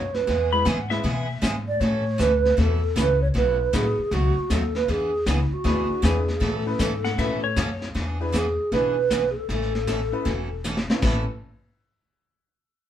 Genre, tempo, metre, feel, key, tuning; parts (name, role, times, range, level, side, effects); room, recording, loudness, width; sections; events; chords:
country, western swing; 156 BPM; 4/4; swing 65% on 8ths; A major; A4 = 440 Hz
mellow hollow wooden-headed alto flute; melody; 0.0-10.6 s; E4 to D5; -24 LUFS; right 3 dB
upright bass; bass; 0.0-11.3 s; E1 to B2; -25 LUFS; left 1 dB
vintage brush drum kit; drums; 0.1-11.3 s; brushed snare drum, crash cymbal, hi-hat, kick drum, snare drum; -28 LUFS; equal
picked steel-string acoustic guitar; accompaniment; 0.3-11.2 s; A2 to A4; -31 LUFS; right 2 dB
clean lap steel guitar; second line; 0.5-1.5, 7.0-7.9 s; C#5 to B5; -28 LUFS; left 6 dB
tack piano; accompaniment; 0.5-11.3 s; G#3 to C#5; -30 LUFS; left 2 dB
moderate small room reverb, RT60 0.5 s; band playing live in one room; -21 LUFS; side -10 dB against mid
0.0-8.0 A section; 8.0-11.0 B section; 11.0-12.6 C section
drum fill 10.6-11.0
0.3 E; 1.8 Aadd9; 3.3 B7; 4.9 E7; 6.4 Aadd9; 8.0 E7; 9.5 Aadd9